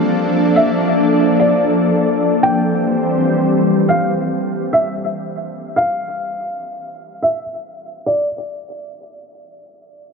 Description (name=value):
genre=hip hop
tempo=144 BPM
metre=4/4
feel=half-time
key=unclear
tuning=A4 = 439 Hz
part: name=felt-muted upright piano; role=melody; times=0.0-8.3 s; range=D5 to G5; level=-20 LUFS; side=equal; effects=low-pass filter, ping-pong delay
part: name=ethereal airy pad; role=sustained chords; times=0.0-4.1 s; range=E3 to D5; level=-15 LUFS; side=left 1 dB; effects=ensemble chorus, built-in reverb
room=moderate huge ambient reverb, RT60 8.2 s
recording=low-pass filter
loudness=-14 LUFS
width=side -5 dB against mid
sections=0.0-9.1 A section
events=filter sweep 0.0-9.1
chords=0.0 Bbmaj7; 2.4 C; 5.8 N.C.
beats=0.35 | 0.76 1.18 1.60 2.01 | 2.43 2.85 3.26 3.68 | 4.10 4.51 4.93 5.35 | 5.76 6.18 6.60 7.01 | 7.43 7.85